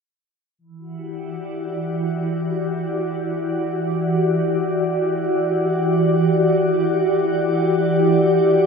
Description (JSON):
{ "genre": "ambient", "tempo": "free time", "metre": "none", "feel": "none", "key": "E minor", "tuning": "A4 = 440 Hz", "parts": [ { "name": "glassy FM pad", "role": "sustained chords", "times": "0.9-8.7 s", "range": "E3 to D5", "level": "-18 LUFS", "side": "equal", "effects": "ensemble chorus, built-in reverb" } ], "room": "wet huge ambient reverb, RT60 7.7 s", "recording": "in a vast, echoing space", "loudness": "-18 LUFS", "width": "side -5 dB against mid", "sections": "0.6-8.7 A section", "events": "none", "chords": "0.6 Em9" }